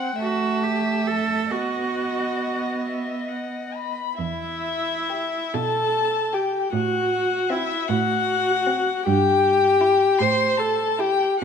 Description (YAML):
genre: classical, slow romantic movement for string quartet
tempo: 42-53 BPM (dotted quarters)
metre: 6/8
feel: rubato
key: E minor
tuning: A4 = 440 Hz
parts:
  - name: dark violin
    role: melody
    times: 0.0-11.4 s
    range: E5 to C6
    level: -24 LUFS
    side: left 7 dB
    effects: none
  - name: dark violin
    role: second line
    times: 0.0-11.3 s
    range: C4 to F#5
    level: -32 LUFS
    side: left 3 dB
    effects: none
  - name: warm viola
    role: accompaniment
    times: 0.0-11.4 s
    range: A3 to C5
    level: -24 LUFS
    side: right 1 dB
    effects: none
  - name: warm cello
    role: bass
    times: 0.2-11.4 s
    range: E2 to A4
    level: -27 LUFS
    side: right 6 dB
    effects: none
room: wet recital hall reverb, RT60 1.5 s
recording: none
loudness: -20 LUFS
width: side -7 dB against mid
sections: 0.0-4.2 A section; 4.2-11.4 B section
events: none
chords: 0.2 A5; 1.5 B; 4.2 Em; 6.7 F#dim/A; 9.1 Em/G; 10.2 A5